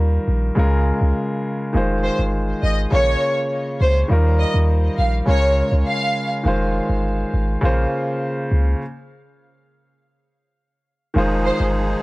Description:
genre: dancehall.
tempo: 102 BPM.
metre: 4/4.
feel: straight.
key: F minor.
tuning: A4 = 440 Hz.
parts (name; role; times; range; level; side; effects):
warm baby grand piano; accompaniment; 0.0-12.0 s; Db3 to Db5; -22 LUFS; equal; none.
clean 808-style bass; bass; 0.0-12.0 s; F1 to Eb2; -18 LUFS; equal; none.
warm symphonic violin section; melody; 2.0-6.3, 11.5-11.6 s; C5 to F5; -22 LUFS; right 1 dB; tape echo.
musette accordion; sustained chords; 11.2-12.0 s; F3 to Ab4; -27 LUFS; right 1 dB; none.
room: little or no reverb.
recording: dry, gritty hardware recording, cassette tape.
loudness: -17 LUFS.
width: side -21 dB against mid.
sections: 0.0-11.2 A section.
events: stop 8.8-11.2.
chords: 0.0 Ebadd9; 0.6 Db6; 1.7 Fm7; 2.9 Bbm; 4.1 Ebadd9; 5.3 Db6; 6.5 Fm7; 7.6 Bbmadd9; 8.8 N.C.; 11.2 Fm7.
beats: 0.57 1.16 | 1.75 2.34 2.93 3.51 | 4.10 4.69 5.28 5.87 | 6.46 7.04 7.63 8.22 | 8.81 9.40 9.98 10.57 | 11.16 11.75.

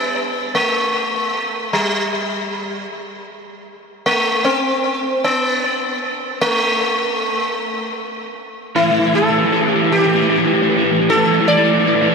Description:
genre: rock.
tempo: 51 BPM (dotted quarters).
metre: 6/8.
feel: straight.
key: A minor.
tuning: A4 = 440 Hz.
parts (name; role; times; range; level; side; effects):
sitar; melody; 0.0-12.1 s; G3 to D5; -17 LUFS; equal; ping-pong delay.
crunchy overdriven guitar; riff; 8.8-12.1 s; A2 to E3; -15 LUFS; right 1 dB; wide subtle chorus.
room: wet huge ambient reverb, RT60 4.7 s.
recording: dreamy mix soaked in reverb.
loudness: -15 LUFS.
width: side -5 dB against mid.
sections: 0.0-8.8 A section; 8.8-12.1 B section.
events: build-up 8.8-12.1.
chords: 0.0 N.C.; 8.8 A5.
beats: 0.55 | 1.72 2.90 | 4.07 5.24 | 6.41 7.58 | 8.75 9.92 | 11.09.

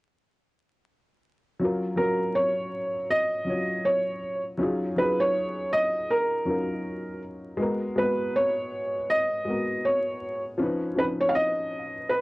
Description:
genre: hip hop.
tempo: 80 BPM.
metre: 4/4.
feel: swing 59% on 16ths.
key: F# major.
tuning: A4 = 440 Hz.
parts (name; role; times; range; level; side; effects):
dark upright piano; accompaniment; 1.6-12.2 s; E#3 to C#5; -29 LUFS; left 1 dB; low-pass filter, cassette tape.
felt-muted upright piano; melody; 2.0-12.2 s; A#4 to E#5; -25 LUFS; right 1 dB; low-pass filter, cassette tape.
room: moderate booth ambience, RT60 0.2 s.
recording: home recording on cassette, vinyl crackle, nothing above 10.7 kHz.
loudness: -24 LUFS.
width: side -21 dB against mid.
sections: 1.6-12.2 A section.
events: none.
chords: 1.6 F#maj7; 4.6 D#m11; 7.6 G#m9; 10.6 C#9.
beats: | 1.59 2.34 3.09 3.84 | 4.59 5.34 6.09 6.84 | 7.59 8.34 9.09 9.84 | 10.59 11.34 12.09.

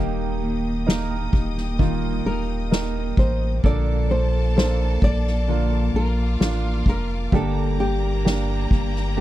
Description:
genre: pop ballad.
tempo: 65 BPM.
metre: 4/4.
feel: straight.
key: Bb major.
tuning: A4 = 440 Hz.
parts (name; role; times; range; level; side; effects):
nylon-string guitar; melody; 0.0-9.2 s; G4 to D5; -29 LUFS; left 1 dB; none.
warm baby grand piano; accompaniment; 0.0-9.2 s; G2 to Bb4; -28 LUFS; right 9 dB; none.
warm studio string section; sustained chords; 0.0-9.2 s; Bb3 to Eb6; -34 LUFS; equal; none.
fingerpicked steel-string acoustic guitar; arpeggios; 0.0-9.2 s; G2 to A4; -31 LUFS; left 14 dB; none.
saturated sub bass; bass; 0.0-9.2 s; Eb1 to Bb1; -24 LUFS; equal; none.
soft-mallet drum kit; drums; 0.4-9.2 s; kick drum, ride cymbal, snare drum; -21 LUFS; equal; none.
clear symphonic violin section; second line; 3.6-9.2 s; Bb3 to Bb5; -35 LUFS; left 2 dB; none.
room: little or no reverb.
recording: dry, close 1970s-style studio recording.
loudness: -19 LUFS.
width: side -14 dB against mid.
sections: 0.0-9.2 A section.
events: none.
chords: 0.0 Eb; 3.6 Bbmaj7; 7.3 Gm.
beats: 0.86 1.79 2.71 | 3.63 4.56 5.48 6.40 | 7.33 8.25 9.17.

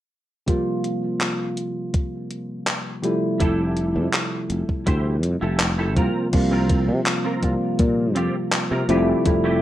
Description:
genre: vaporwave.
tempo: 82 BPM.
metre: 4/4.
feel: straight.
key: unclear.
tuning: A4 = 441 Hz.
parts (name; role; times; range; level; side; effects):
bell-like tine electric piano; accompaniment; 0.5-9.6 s; C3 to F4; -23 LUFS; equal; analog chorus, tape echo.
electronic kick drum; drums; 0.5-9.4 s; none; -21 LUFS; equal; vintage 12-bit sampler grit.
gated 80s digital drum machine; drums; 0.5-9.4 s; crash cymbal, handclaps, hi-hat; -25 LUFS; equal; gated reverb, vintage 12-bit sampler grit.
semi-hollow electric guitar; riff; 3.4-9.6 s; A3 to C5; -29 LUFS; right 2 dB; ensemble chorus, vintage 12-bit sampler grit, low-pass filter, tape echo.
sustaining fretless electric bass; bass; 3.4-9.6 s; F1 to C3; -22 LUFS; equal; none.
room: moderate studio reverb, RT60 0.6 s.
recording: rough home demo mix.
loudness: -20 LUFS.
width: side -13 dB against mid.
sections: 0.5-6.3 A section; 6.3-9.6 B section.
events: none.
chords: 0.5 C7sus4; 3.0 Fmaj9; 6.0 C7sus4; 8.9 Fmaj9.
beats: | 0.48 1.21 1.94 2.67 | 3.41 4.14 4.87 5.60 | 6.33 7.06 7.80 8.53 | 9.26.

